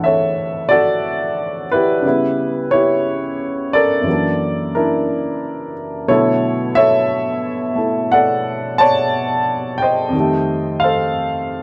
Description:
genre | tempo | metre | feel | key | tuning
solo jazz | 59 BPM | 4/4 | swing 66% on 8ths | unclear | A4 = 440 Hz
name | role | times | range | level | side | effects
warm upright piano | solo | 0.0-11.6 s | D2 to A5 | -17 LUFS | equal | none
room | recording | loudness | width
light reverb | none | -17 LUFS | mono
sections
0.0-11.6 A section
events
none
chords
0.0 Dmaj9; 2.0 C#m7b5; 4.1 F#7alt; 6.1 Bm11; 10.1 F9

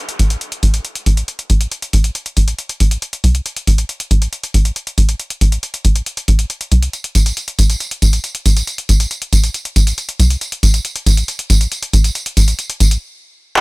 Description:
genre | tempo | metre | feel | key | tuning
driving peak-time techno | 138 BPM | 4/4 | straight | A minor | A4 = 437 Hz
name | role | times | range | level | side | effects
punchy analog drum machine | drums | 0.1-13.6 s | handclaps, hi-hat, tambourine | -20 LUFS | equal | high-pass filter on hats, high-pass filter on snare, high-pass filter on perc
tight sequencer bass | bass | 0.2-13.0 s | A1 to C2 | -11 LUFS | equal | none
room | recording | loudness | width
little or no reverb | none | -14 LUFS | side -26 dB against mid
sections
0.0-13.6 A section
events
build-up 0.0-13.6; stop 13.0-13.6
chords
none

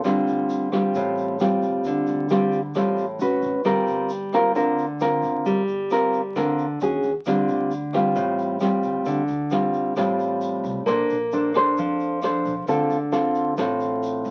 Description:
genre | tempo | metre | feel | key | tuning
bossa nova | 133 BPM | 4/4 | straight | D minor | A4 = 440 Hz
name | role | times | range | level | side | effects
nylon-string guitar | accompaniment | 0.0-14.3 s | A2 to C5 | -23 LUFS | equal | none
upright bass | bass | 0.0-14.3 s | G1 to F2 | -41 LUFS | equal | none
jazz brush drum kit | drums | 0.0-14.3 s | hi-hat, kick drum, rim click | -42 LUFS | equal | none
tube shaker | percussion | 0.0-14.3 s | none | -54 LUFS | equal | none
room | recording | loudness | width
moderate studio reverb, RT60 0.5 s | very old 78 rpm record, vinyl crackle | -23 LUFS | mono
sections
0.0-14.3 A section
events
none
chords
0.0 Dm7; 3.2 G#m7; 3.7 Gm7; 6.8 Ebm7; 7.3 Dm7; 10.9 Bbmaj9; 12.7 Dm7

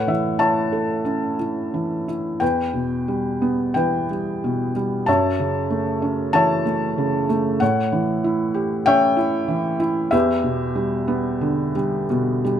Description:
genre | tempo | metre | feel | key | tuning
classical, lyrical solo piano | 85-98 BPM | 4/4 | rubato | E dorian | A4 = 445 Hz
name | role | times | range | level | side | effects
felt-muted upright piano | solo | 0.0-12.6 s | E2 to A5 | -19 LUFS | equal | none
room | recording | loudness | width
light reverb | close, detailed microphones | -19 LUFS | side -9 dB against mid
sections
0.0-12.6 A section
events
none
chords
0.0 Aadd9; 2.4 Em; 5.1 F#m7; 7.6 A7; 10.1 Em7

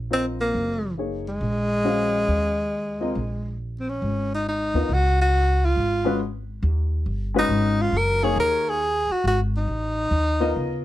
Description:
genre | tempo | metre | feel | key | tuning
modal jazz | 138 BPM | 4/4 | swing 66% on 8ths | G# minor from 4.0 s | A4 = 437 Hz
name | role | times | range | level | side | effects
upright bass | bass | 0.0-10.8 s | Gb1 to C#3 | -25 LUFS | equal | none
breathy tenor saxophone | melody | 0.1-10.8 s | Ab3 to A#4 | -23 LUFS | equal | none
dark baby grand piano | accompaniment | 0.1-10.8 s | G#3 to F5 | -26 LUFS | left 4 dB | none
room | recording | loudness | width
little or no reverb | close, detailed microphones | -21 LUFS | side -14 dB against mid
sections
0.0-4.0 A section; 4.0-10.8 B section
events
none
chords
0.0 Ebm11; 4.0 G#9sus4

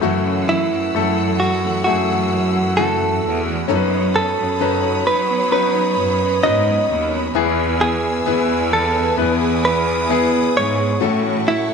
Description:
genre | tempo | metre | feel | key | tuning
pop ballad | 66 BPM | 4/4 | straight | unclear | A4 = 441 Hz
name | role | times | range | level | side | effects
clear baby grand piano | accompaniment | 0.0-11.7 s | A2 to B4 | -22 LUFS | left 11 dB | none
warm symphonic string section | sustained chords | 0.0-11.7 s | A3 to E6 | -26 LUFS | left 2 dB | none
picked steel-string acoustic guitar | arpeggios | 0.0-11.7 s | F#2 to G#4 | -26 LUFS | right 12 dB | tape echo
bright studio cello section | bass | 0.0-11.7 s | D#2 to F#3 | -22 LUFS | right 1 dB | none
direct-recorded clean electric guitar | melody | 0.5-11.7 s | E4 to D#5 | -19 LUFS | right 2 dB | none
room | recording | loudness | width
moderate echo chamber reverb, RT60 1.3 s, small room ambience | 1960s-style stereo with parts hard left and right | -15 LUFS | side -6 dB against mid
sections
0.0-11.7 A section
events
none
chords
0.0 F#m7; 3.7 Badd9/F#; 7.3 E; 11.0 A6

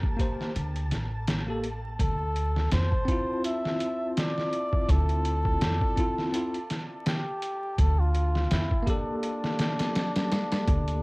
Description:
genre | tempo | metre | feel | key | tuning
trip hop | 83 BPM | 4/4 | swing 56% on 16ths | D minor | A4 = 440 Hz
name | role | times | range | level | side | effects
bell-like tine electric piano | accompaniment | 0.0-11.0 s | Bb3 to C5 | -32 LUFS | equal | fast stereo tremolo
trip hop sampler-style drum kit | drums | 0.0-11.0 s | hi-hat, kick drum, snare drum | -28 LUFS | equal | overdrive
flickering grainy texture | texture | 0.0-11.0 s | A5 | -45 LUFS | right 1 dB | built-in reverb
upright bass | bass | 0.6-11.0 s | A1 to F2 | -26 LUFS | equal | tube saturation
trumpet with cup mute | melody | 2.0-11.0 s | D4 to E5 | -32 LUFS | equal | dub echo
room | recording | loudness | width
light reverb, digital ambience | worn, warbling old tape, cassette tape, vinyl crackle, warbly pitch drift | -25 LUFS | side -26 dB against mid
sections
0.0-11.0 A section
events
none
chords
0.0 Gmadd9/D; 2.0 Dm7; 7.8 Gmadd9/D

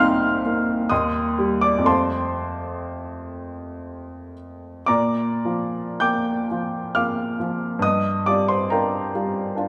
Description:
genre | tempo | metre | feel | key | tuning
classical, romantic nocturne for solo piano | 50-71 BPM | 3/4 | rubato | Bb major | A4 = 440 Hz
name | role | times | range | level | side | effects
clear upright piano | solo | 0.0-9.7 s | C2 to G6 | -23 LUFS | equal | none
room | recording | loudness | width
wet concert hall reverb, RT60 2.1 s | none | -22 LUFS | mono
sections
0.0-9.7 A section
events
none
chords
0.0 Cm7; 0.9 Cm/Eb; 1.9 F; 4.9 Bb; 7.8 Gm7

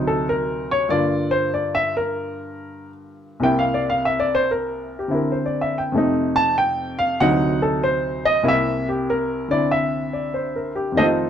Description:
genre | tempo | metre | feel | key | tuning
solo jazz | 95 BPM | 4/4 | swing 67% on 8ths | unclear | A4 = 440 Hz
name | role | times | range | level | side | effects
warm upright piano | solo | 0.0-11.3 s | C2 to A5 | -19 LUFS | equal | none
room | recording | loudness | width
light reverb | close, detailed microphones | -18 LUFS | side -9 dB against mid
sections
0.0-11.0 A section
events
upright piano solo 0.0-11.0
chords
0.0 D7b9; 0.9 Gm7; 3.4 C7; 5.9 F7; 7.2 D7b9; 8.4 C7

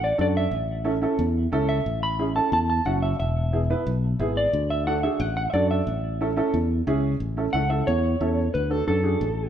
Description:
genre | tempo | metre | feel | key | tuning
latin, cumbia | 180 BPM | 4/4 | straight | A major | A4 = 440 Hz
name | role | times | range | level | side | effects
mellow electric guitar | melody | 0.0-9.5 s | A4 to B5 | -26 LUFS | right 1 dB | spring reverb, tape echo
fingered electric bass | bass | 0.0-9.5 s | E1 to F#2 | -25 LUFS | left 1 dB | none
dark upright piano | accompaniment | 0.2-9.2 s | B3 to B4 | -27 LUFS | right 3 dB | none
room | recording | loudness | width
wet studio reverb, RT60 0.9 s | heard from further back in the room | -21 LUFS | side -9 dB against mid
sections
0.0-7.2 A section; 7.2-9.5 B section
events
clean electric guitar solo 7.2-9.5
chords
0.0 D; 0.5 A; 3.2 E; 4.5 D; 5.9 A; 8.5 D

